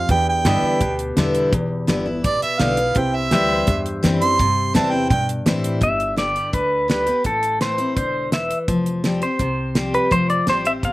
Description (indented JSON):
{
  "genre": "honky-tonk and classic country",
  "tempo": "168 BPM",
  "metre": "4/4",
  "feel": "straight",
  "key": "G major",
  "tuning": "A4 = 441 Hz",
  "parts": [
    { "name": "warm harmonica", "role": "second line", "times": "0.0-5.3 s", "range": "D5 to C6", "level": "-20 LUFS", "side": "right 3 dB", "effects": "slapback echo" },
    { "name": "picked steel-string acoustic guitar", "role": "accompaniment", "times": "0.0-10.9 s", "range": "E2 to G4", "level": "-22 LUFS", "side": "left 2 dB", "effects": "none" },
    { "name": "warm upright piano", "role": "accompaniment", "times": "0.0-5.8 s", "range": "D4 to C5", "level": "-34 LUFS", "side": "right 4 dB", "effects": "none" },
    { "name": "pedal steel guitar", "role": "sustained chords", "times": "0.0-5.8 s", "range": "G4 to E5", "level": "-29 LUFS", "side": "equal", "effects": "none" },
    { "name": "upright bass", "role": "bass", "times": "0.0-10.9 s", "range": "E1 to B2", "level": "-26 LUFS", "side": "equal", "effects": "none" },
    { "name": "damped 70s drum kit", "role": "drums", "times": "0.1-10.9 s", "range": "hi-hat, kick drum, snare drum", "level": "-22 LUFS", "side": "right 1 dB", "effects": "none" },
    { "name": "pedal steel guitar", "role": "melody", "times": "5.8-10.9 s", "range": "A4 to F5", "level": "-20 LUFS", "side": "equal", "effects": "slapback echo" }
  ],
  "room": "little or no reverb",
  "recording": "recorded outdoors, with no room sound",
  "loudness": "-17 LUFS",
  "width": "side -17 dB against mid",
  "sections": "0.0-5.8 A section; 5.8-10.9 B section",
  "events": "harmonica solo 0.0-5.8",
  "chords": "0.1 Em7; 3.0 C; 5.8 G; 7.3 Am; 8.7 Fsus2"
}